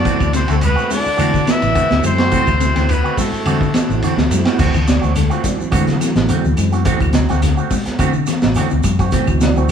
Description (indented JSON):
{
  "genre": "afrobeat",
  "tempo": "106 BPM",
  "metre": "4/4",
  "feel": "swing 53% on 16ths",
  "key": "D mixolydian",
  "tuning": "A4 = 438 Hz",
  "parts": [
    { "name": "mellow trumpet", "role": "melody", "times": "0.0-4.3 s", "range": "A4 to E5", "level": "-20 LUFS", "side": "left 2 dB", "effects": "none" },
    { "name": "mellow baritone saxophone", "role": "second line", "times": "0.0-4.3 s", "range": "A2 to E3", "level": "-29 LUFS", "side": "left 1 dB", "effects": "none" },
    { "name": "raspy tenor saxophone", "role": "second line", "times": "0.0-4.3 s", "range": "A3 to E4", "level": "-28 LUFS", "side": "right 1 dB", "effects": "none" },
    { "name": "percussive tonewheel organ", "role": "accompaniment", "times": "0.0-9.7 s", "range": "E3 to D5", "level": "-25 LUFS", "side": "right 5 dB", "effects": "slow rotary speaker, chorus vibrato" },
    { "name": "electric guitar with an envelope filter", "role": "stabs", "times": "0.0-9.7 s", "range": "E3 to F#4", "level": "-23 LUFS", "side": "right 5 dB", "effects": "spring reverb" },
    { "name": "fingered electric bass", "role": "bass", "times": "0.0-9.7 s", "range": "A1 to D3", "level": "-18 LUFS", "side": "left 1 dB", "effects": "none" },
    { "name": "mellow electric guitar", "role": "arpeggios", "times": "0.1-9.7 s", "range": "C3 to E3", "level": "-24 LUFS", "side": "left 6 dB", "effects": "none" },
    { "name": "crunchy breakbeat drum kit", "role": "drums", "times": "0.1-9.7 s", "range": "crash cymbal, hi-hat, kick drum, ride cymbal, snare drum", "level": "-19 LUFS", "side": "right 1 dB", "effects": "none" },
    { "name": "shekere", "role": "percussion", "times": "0.1-9.7 s", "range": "none", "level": "-27 LUFS", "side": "right 2 dB", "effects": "none" },
    { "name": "claves", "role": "percussion", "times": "0.2-9.7 s", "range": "none", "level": "-34 LUFS", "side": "right 2 dB", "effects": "none" },
    { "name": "congas", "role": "percussion", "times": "0.3-9.7 s", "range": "none", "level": "-25 LUFS", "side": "left 5 dB", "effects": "none" }
  ],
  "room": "moderate large studio reverb, RT60 1.2 s",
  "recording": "band playing live in one room",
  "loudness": "-13 LUFS",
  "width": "side -8 dB against mid",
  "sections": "0.0-4.6 A section; 4.6-9.7 B section",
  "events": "tonewheel organ solo 4.6-9.7",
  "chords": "0.0 D9",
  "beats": "| 0.05 0.62 1.19 1.76 | 2.33 2.89 3.46 4.03 | 4.60 5.16 5.73 6.30 | 6.86 7.43 8.00 8.56 | 9.13 9.70"
}